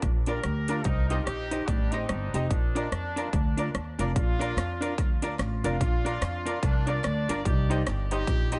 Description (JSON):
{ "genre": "ska", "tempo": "145 BPM", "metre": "4/4", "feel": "swing 60% on 8ths", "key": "Bb major", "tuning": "A4 = 440 Hz", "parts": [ { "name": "upright bass", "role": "bass", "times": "0.0-8.6 s", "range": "F1 to F2", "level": "-32 LUFS", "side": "equal", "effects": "none" }, { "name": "big-room dance drum kit", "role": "drums", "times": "0.0-8.6 s", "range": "hi-hat, kick drum, rim click", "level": "-31 LUFS", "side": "equal", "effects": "none" }, { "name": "warm horn section", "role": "melody", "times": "0.3-8.6 s", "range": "G3 to D5", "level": "-37 LUFS", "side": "equal", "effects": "tape echo" }, { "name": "hollow-body jazz guitar", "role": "accompaniment", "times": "0.3-8.6 s", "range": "D4 to Eb5", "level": "-37 LUFS", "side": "equal", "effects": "none" }, { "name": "bright upright piano", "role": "stabs", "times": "0.3-8.6 s", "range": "D4 to Eb5", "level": "-38 LUFS", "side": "equal", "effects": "tape echo" }, { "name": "group handclap", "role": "percussion", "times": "4.6-8.0 s", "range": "none", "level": "-54 LUFS", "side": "equal", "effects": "none" } ], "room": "light reverb", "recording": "nothing above 10.6 kHz", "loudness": "-28 LUFS", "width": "mono", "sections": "0.0-4.2 A section; 4.2-8.6 A section", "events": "none", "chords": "0.0 Bb; 0.8 Cm; 2.5 Bb; 7.5 Cm" }